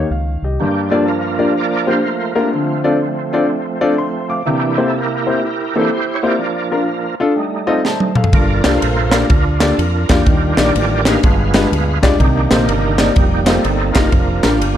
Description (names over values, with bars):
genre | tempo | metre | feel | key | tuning
uptempo gospel | 124 BPM | 4/4 | swing 64% on 8ths | unclear | A4 = 439 Hz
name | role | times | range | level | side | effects
warm grand piano | accompaniment | 0.0-14.5 s | G2 to D6 | -17 LUFS | left 3 dB | none
fingered electric bass | bass | 0.0-0.6, 8.3-14.8 s | F1 to F2 | -18 LUFS | equal | none
overdriven tonewheel organ | sustained chords | 0.6-14.8 s | Eb3 to F5 | -19 LUFS | right 4 dB | slow rotary speaker, chorus vibrato
crisp fusion drum kit | drums | 7.8-14.8 s | kick drum, ride cymbal, snare drum, toms | -16 LUFS | equal | none
group handclap | percussion | 8.6-14.5 s | none | -26 LUFS | left 2 dB | none
room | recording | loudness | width
light reverb | dark, warm production | -13 LUFS | side -10 dB against mid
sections
0.6-14.8 A section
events
tonewheel organ solo 0.6-14.8; drum fill 7.8-8.3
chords
0.0 Eb7; 0.6 Gm7; 2.5 Dm7; 4.5 C7; 6.4 Bb/F; 7.4 F7; 8.3 Gm7; 10.3 Ebmaj7; 11.2 G7b9; 12.2 Cm7; 13.2 F9sus4; 14.1 Bb/F